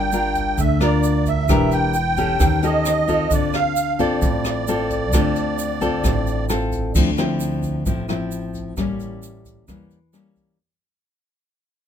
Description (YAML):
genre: bossa nova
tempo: 132 BPM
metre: 4/4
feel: straight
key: D minor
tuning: A4 = 440 Hz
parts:
  - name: musette accordion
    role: melody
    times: 0.0-6.5 s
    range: D5 to G5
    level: -22 LUFS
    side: right 2 dB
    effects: none
  - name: nylon-string guitar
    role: accompaniment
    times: 0.0-10.6 s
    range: A2 to Bb4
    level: -22 LUFS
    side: left 3 dB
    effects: none
  - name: upright bass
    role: bass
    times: 0.0-10.6 s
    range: E1 to E2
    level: -24 LUFS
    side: right 1 dB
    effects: none
  - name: jazz brush drum kit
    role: drums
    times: 0.1-10.5 s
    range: crash cymbal, hi-hat, kick drum, rim click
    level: -25 LUFS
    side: right 1 dB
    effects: none
  - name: egg shaker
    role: percussion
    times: 0.1-10.6 s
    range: none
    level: -34 LUFS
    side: right 7 dB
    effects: none
room: light reverb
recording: minimal, uncompressed stereo recording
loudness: -18 LUFS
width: side -9 dB against mid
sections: 0.0-6.9 A section; 6.9-10.6 B section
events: fade-out 6.9-10.6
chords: 0.0 Gm7; 1.5 Em7b5; 2.4 Eb7#11; 3.3 Dm7; 6.9 Dm9; 8.8 A7b9